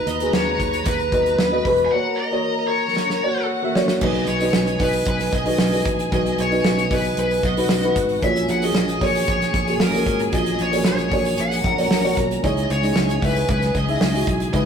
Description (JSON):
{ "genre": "piano-driven pop", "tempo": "114 BPM", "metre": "4/4", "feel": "straight", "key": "B major", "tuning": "A4 = 439 Hz", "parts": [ { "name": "high-gain lead guitar", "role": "melody", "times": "0.0-14.7 s", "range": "A#4 to G#5", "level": "-24 LUFS", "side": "left 1 dB", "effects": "distortion" }, { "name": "warm studio violin section", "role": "second line", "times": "0.0-14.7 s", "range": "F#4 to B5", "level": "-28 LUFS", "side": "left 2 dB", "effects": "none" }, { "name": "dark upright piano", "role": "accompaniment", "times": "0.0-14.7 s", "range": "A#2 to E5", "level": "-22 LUFS", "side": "equal", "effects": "none" }, { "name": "fingered electric bass", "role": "bass", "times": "0.1-14.7 s", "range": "E1 to D#2", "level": "-25 LUFS", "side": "equal", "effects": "none" }, { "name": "natural country drum kit", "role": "drums", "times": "0.1-14.7 s", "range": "crash cymbal, hi-hat, kick drum, snare drum", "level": "-23 LUFS", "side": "right 1 dB", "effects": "none" } ], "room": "moderate stone room reverb, RT60 1.2 s", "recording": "rough rehearsal-room recording, warm saturation", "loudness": "-17 LUFS", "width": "side -7 dB against mid", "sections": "0.0-4.0 A section; 4.0-14.7 B section", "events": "drum fill 3.0-4.0", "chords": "0.0 B/D#; 1.9 F#; 4.0 B; 8.2 F#; 12.4 C#madd9", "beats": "0.34 0.86 1.39 | 1.92 2.44 2.97 3.50 | 4.02 4.55 5.07 5.60 | 6.12 6.65 7.18 7.70 | 8.23 8.76 9.28 9.81 | 10.33 10.86 11.38 11.91 | 12.44 12.96 13.49 14.01 | 14.54" }